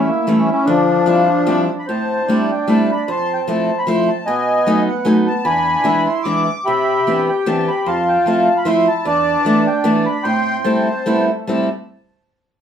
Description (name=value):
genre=musette waltz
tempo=151 BPM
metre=3/4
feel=swing 54% on 8ths, rubato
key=A minor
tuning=A4 = 440 Hz
part: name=accordion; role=melody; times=0.0-11.7 s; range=F3 to D6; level=-18 LUFS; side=left 1 dB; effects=light tremolo tuning, slapback echo, plate reverb
part: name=mellow accordion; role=second line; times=0.0-11.7 s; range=A3 to G4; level=-20 LUFS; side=right 2 dB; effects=none
part: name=picked acoustic archtop guitar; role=accompaniment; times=0.0-11.7 s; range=E2 to E4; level=-18 LUFS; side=equal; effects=none
room=wet studio reverb, RT60 0.5 s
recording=heard from further back in the room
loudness=-14 LUFS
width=side -8 dB against mid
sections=0.0-1.9 A section; 1.9-11.5 B section; 11.5-12.6 C section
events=none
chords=0.0 A7; 0.7 Dm11; 1.9 Am7; 3.1 Fmaj7; 4.3 B7; 5.5 E7; 6.7 Cmaj9; 7.9 Fmaj7; 9.0 E7sus4; 10.2 Am7